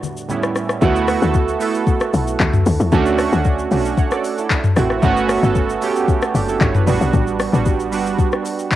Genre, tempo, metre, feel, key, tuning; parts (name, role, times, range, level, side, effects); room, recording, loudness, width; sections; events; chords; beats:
amapiano; 114 BPM; 4/4; straight; A4 = 440 Hz
warm analog keys; accompaniment; 0.0-8.7 s; A2 to F#5; -18 LUFS; right 5 dB; chorus, cassette tape
smooth R&B drum kit; drums; 0.0-8.8 s; handclaps, hi-hat, kick drum, rim click, shaker, toms; -19 LUFS; left 2 dB; cassette tape
tight log drum bass; bass; 0.8-8.2 s; F#1 to E2; -19 LUFS; left 2 dB
light reverb, digital ambience; home recording on cassette; -15 LUFS; side -13 dB against mid
0.8-8.8 A section
drop 0.8-8.8
0.3 A9; 0.8 D6; 2.9 Bm9/D; 4.5 Am6; 5.0 Gmaj9#11; 6.9 A13sus4
0.29 | 0.82 1.35 1.87 2.40 | 2.93 3.45 3.98 4.50 | 5.03 5.56 6.08 6.61 | 7.14 7.66 8.19 8.72